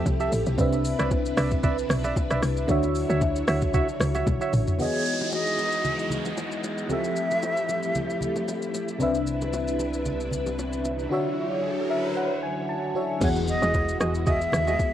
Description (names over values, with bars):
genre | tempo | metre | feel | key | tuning
amapiano | 114 BPM | 4/4 | swing 55% on 16ths | unclear | A4 = 441 Hz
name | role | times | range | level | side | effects
FM electric piano with soft pad layer | accompaniment | 0.0-14.9 s | C3 to A5 | -28 LUFS | left 1 dB | chorus, phaser, cassette tape, plate reverb
string machine, full ensemble | sustained chords | 0.0-14.9 s | C3 to C#5 | -34 LUFS | equal | ensemble chorus, cassette tape
percussive organ stab | stabs | 0.0-4.5, 13.6-14.8 s | F#4 to E5 | -31 LUFS | right 4 dB | chorus, cassette tape, tape echo, plate reverb
woody log drum bass | bass | 0.0-4.7, 13.2-14.8 s | A1 to E2 | -27 LUFS | equal | none
smooth R&B drum kit | drums | 0.1-14.9 s | crash cymbal, hi-hat, kick drum, rim click, shaker, toms | -28 LUFS | equal | cassette tape
bongos and congas | percussion | 0.1-14.9 s | none | -34 LUFS | right 2 dB | none
breathy jazz flute | melody | 4.8-8.7, 13.2-14.9 s | C#5 to E5 | -28 LUFS | equal | cassette tape, tape echo
downlifter, riser and impact | sound effects | 4.8-14.9 s | none | -36 LUFS | equal | none
warm sub bass | bass | 9.0-11.1 s | C2 | -34 LUFS | equal | none
room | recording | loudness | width
moderate booth ambience, RT60 0.2 s | home recording on cassette | -23 LUFS | side -11 dB against mid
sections
0.0-4.8 A section; 4.8-13.2 B section; 13.2-14.9 C section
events
drop 0.0-4.8; drum fill 4.3-4.8; riser 10.2-13.2; FM electric piano fill 11.6-13.2; impact 13.2-14.9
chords
0.0 Fmaj9; 0.6 Cmaj9; 2.7 Dmaj9; 4.8 Emaj9; 6.9 Fmaj9; 9.0 Cmaj9; 11.1 Dmaj9; 13.2 Emaj9